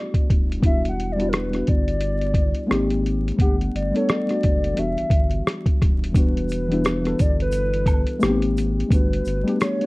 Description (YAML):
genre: lo-fi hip hop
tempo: 87 BPM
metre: 4/4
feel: swing 61% on 16ths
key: unclear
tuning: A4 = 444 Hz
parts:
  - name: warbly nostalgic lead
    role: melody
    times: 0.0-9.9 s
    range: G4 to F#5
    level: -28 LUFS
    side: equal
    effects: chorus, low-pass filter, plate reverb
  - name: muted felt-like synth keys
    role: accompaniment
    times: 0.0-9.9 s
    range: E3 to F#5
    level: -24 LUFS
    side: left 1 dB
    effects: chorus, cassette tape, low-pass filter, plate reverb
  - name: lo-fi sampler-style drum kit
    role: drums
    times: 0.1-9.9 s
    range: hi-hat, kick drum, rim click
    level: -20 LUFS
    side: equal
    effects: none
  - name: saturated sub bass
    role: bass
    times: 0.3-9.4 s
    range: D#1 to G#1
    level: -26 LUFS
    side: equal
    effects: none
  - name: tube shaker and woodblock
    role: percussion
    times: 6.2-9.8 s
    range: none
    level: -38 LUFS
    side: right 3 dB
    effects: none
room: light reverb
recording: dark, warm production, vinyl crackle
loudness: -18 LUFS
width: side -22 dB against mid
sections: 0.0-6.1 A section; 6.1-9.9 A section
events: none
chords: 0.0 Gmaj7; 0.6 Em7; 2.7 G#maj7; 3.4 Gmaj7; 4.8 Em7; 8.2 G#maj7; 8.9 Gmaj7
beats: | 0.63 1.32 2.01 2.70 | 3.39 4.08 4.77 5.46 | 6.15 6.84 7.53 8.22 | 8.91 9.60